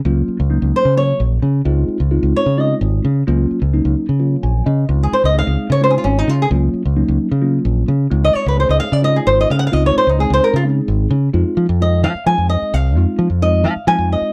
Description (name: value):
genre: electric jazz fusion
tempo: 260 BPM (eighths)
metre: 7/8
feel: straight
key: Db major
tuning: A4 = 440 Hz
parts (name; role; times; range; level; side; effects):
- tine electric piano; accompaniment; 0.1-14.3 s; Gb3 to Ab5; -24 LUFS; equal; phaser
- fingered electric bass; bass; 0.1-14.2 s; Ab1 to F3; -18 LUFS; equal; none
- flamenco guitar; melody; 0.8-14.3 s; Db4 to Ab5; -18 LUFS; equal; none
room: little or no reverb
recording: dry, close 1970s-style studio recording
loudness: -16 LUFS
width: mono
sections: 0.0-11.3 A section; 11.3-14.3 A section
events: nylon-string guitar solo 0.0-14.3; tine electric piano fill 4.2-4.9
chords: 0.0 Ebm9/Db; 1.7 Dbmaj9; 3.3 Ebm9/Db; 4.9 Dbmaj9; 6.5 Ebm9/Db; 8.1 Dbmaj9; 11.3 Fm7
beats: | 0.05 0.28 0.51 0.74 0.97 1.20 1.43 | 1.66 1.89 2.12 2.35 2.58 2.82 3.05 | 3.28 3.51 3.74 3.97 4.20 4.43 4.66 | 4.89 5.12 5.35 5.58 5.81 6.04 6.27 | 6.50 6.73 6.96 7.19 7.42 7.66 7.88 | 8.12 8.35 8.57 8.81 9.04 9.27 9.50 | 9.73 9.96 10.19 10.42 10.65 10.88 11.11 | 11.34 11.57 11.80 12.03 12.26 12.49 12.72 | 12.95 13.18 13.41 13.64 13.87 14.10